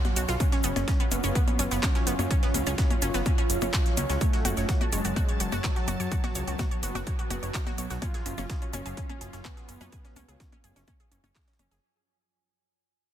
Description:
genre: melodic techno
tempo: 126 BPM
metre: 4/4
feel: straight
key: unclear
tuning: A4 = 438 Hz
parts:
  - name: lush unison pad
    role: sustained chords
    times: 0.0-11.8 s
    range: F#3 to A5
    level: -38 LUFS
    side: left 1 dB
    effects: chorus, phaser, sidechain pumping
  - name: wide unison pluck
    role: arpeggios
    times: 0.0-11.8 s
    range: B3 to C#6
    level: -35 LUFS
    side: right 1 dB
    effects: vintage 12-bit sampler grit, sidechain pumping, dub echo
  - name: analog drone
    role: drone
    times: 0.1-11.9 s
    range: F#2 to F#3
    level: -43 LUFS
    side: left 1 dB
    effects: none
  - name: breakbeat sampler-style drum kit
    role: drums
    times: 0.0-11.8 s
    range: hi-hat, snare drum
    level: -44 LUFS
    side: left 1 dB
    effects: none
  - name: techno drum kit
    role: drums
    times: 0.0-11.8 s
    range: handclaps, hi-hat, percussion blips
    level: -33 LUFS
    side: left 2 dB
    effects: sidechain pumping on hats, sidechain pumping on perc, sidechain pumping on cymbals
  - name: deep dark ambient pad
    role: texture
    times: 0.0-11.8 s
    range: E#4 to A5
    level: -39 LUFS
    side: right 4 dB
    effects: chorus, built-in reverb, sidechain pumping
  - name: fat analog bass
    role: bass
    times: 0.2-11.8 s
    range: F#1 to F#2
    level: -32 LUFS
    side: equal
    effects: tube saturation, sidechain pumping
  - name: tube shaker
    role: percussion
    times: 0.2-11.8 s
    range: none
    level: -40 LUFS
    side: left 3 dB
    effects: none
  - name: wide unison lead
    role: melody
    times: 0.4-10.8 s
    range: F#3 to E#4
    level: -36 LUFS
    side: equal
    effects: sidechain pumping, ping-pong delay
  - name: electronic kick drum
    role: drums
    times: 0.4-11.5 s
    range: none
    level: -27 LUFS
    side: equal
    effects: none
room: digital ambience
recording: dense, heavily limited modern master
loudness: -25 LUFS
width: side -11 dB against mid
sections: 0.0-11.8 A section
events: drop 0.0-11.8; fade-out 4.2-11.8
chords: 0.4 C#/F#; 4.2 F#m; 8.0 C#/F#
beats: | 0.40 0.88 1.35 1.83 | 2.31 2.78 3.26 3.73 | 4.21 4.69 5.16 5.64 | 6.12 6.59 7.07 7.54 | 8.02 8.50 8.97 9.45 | 9.93 10.40 10.88 11.35

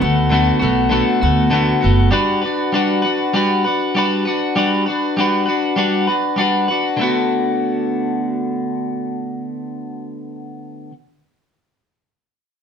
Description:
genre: indie pop, bedroom pop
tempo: 99 BPM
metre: 4/4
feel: swing 55% on 16ths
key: D major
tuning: A4 = 444 Hz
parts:
  - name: twelve-string electric guitar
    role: accompaniment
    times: 0.0-10.9 s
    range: D3 to B4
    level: -16 LUFS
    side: left 1 dB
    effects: warbly pitch drift
  - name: upright bass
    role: bass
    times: 0.0-2.1 s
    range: F#1 to D2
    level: -17 LUFS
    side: right 1 dB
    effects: none
room: moderate studio reverb, RT60 0.7 s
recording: band playing live in one room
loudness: -15 LUFS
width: side -7 dB against mid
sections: 0.0-7.0 A section; 7.0-9.4 B section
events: none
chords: 0.0 D6; 2.1 Gmaj7; 7.0 D6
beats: 0.31 0.92 1.53 | 2.13 2.74 3.35 3.95 | 4.56 5.17 5.77 6.38 | 6.99 7.59 8.20 8.81

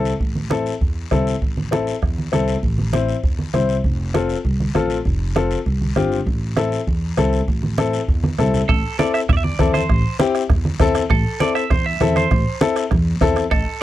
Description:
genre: latin, cumbia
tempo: 198 BPM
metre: 4/4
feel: straight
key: A minor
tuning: A4 = 441 Hz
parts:
  - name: clear upright piano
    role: accompaniment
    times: 0.0-13.4 s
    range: C4 to C5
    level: -20 LUFS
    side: left 5 dB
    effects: none
  - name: upright bass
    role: bass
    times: 0.0-13.6 s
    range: F1 to E2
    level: -22 LUFS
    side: equal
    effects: none
  - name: guiro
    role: percussion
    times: 0.1-13.8 s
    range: none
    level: -36 LUFS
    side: left 8 dB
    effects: none
  - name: bombo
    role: percussion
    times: 0.2-13.7 s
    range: none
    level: -22 LUFS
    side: right 1 dB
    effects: none
  - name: congas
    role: percussion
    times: 0.2-13.7 s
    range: none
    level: -23 LUFS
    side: right 2 dB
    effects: none
  - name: clean electric guitar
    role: second line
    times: 8.7-13.8 s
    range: A4 to E5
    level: -23 LUFS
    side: right 6 dB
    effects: wide subtle chorus
  - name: cowbell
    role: percussion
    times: 13.5-13.7 s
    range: none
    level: -30 LUFS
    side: right 3 dB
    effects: none
room: little or no reverb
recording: dry, close 1970s-style studio recording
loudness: -17 LUFS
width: side -14 dB against mid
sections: 0.0-8.7 A section; 8.7-13.8 B section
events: drum fill 8.2-8.7; clean electric guitar solo 8.7-13.8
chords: 0.0 Am; 3.8 F; 6.3 Am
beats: | 0.20 0.51 0.81 1.12 | 1.42 1.72 2.03 2.33 | 2.63 2.94 3.24 3.54 | 3.85 4.15 4.45 4.75 | 5.06 5.36 5.66 5.97 | 6.27 6.57 6.87 7.18 | 7.48 7.78 8.08 8.39 | 8.69 8.99 9.29 9.59 | 9.90 10.20 10.50 10.80 | 11.10 11.40 11.71 12.01 | 12.31 12.61 12.91 13.21 | 13.52 13.82

